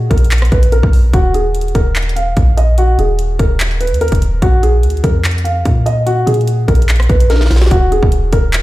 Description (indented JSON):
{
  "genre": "hip hop, trap",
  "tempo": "146 BPM",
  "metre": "4/4",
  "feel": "half-time",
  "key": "Eb minor",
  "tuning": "A4 = 440 Hz",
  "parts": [
    { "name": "dark concert grand piano", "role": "melody", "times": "0.0-8.6 s", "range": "Gb4 to F5", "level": "-17 LUFS", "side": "equal", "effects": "ping-pong delay" },
    { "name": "warm 808-style bass", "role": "bass", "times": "0.0-8.6 s", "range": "Eb1 to Bb2", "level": "-13 LUFS", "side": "equal", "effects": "none" },
    { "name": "trap drum kit", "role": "drums", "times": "0.1-8.6 s", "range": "handclaps, hi-hat, kick drum, rim click, snare drum", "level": "-14 LUFS", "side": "equal", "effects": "none" }
  ],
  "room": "digital ambience",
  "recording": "played on a big sound system in a bare room, large studio reverb",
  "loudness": "-10 LUFS",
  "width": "side -17 dB against mid",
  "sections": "0.0-7.7 A section",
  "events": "drum fill 7.3-7.7",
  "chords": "0.0 N.C.; 1.1 Eb5; 4.4 Bb5; 7.7 Eb5",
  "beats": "0.31 0.72 | 1.14 1.55 1.96 2.37 | 2.78 3.19 3.60 4.01 | 4.42 4.83 5.25 5.66 | 6.07 6.48 6.89 7.30 | 7.71 8.12 8.53"
}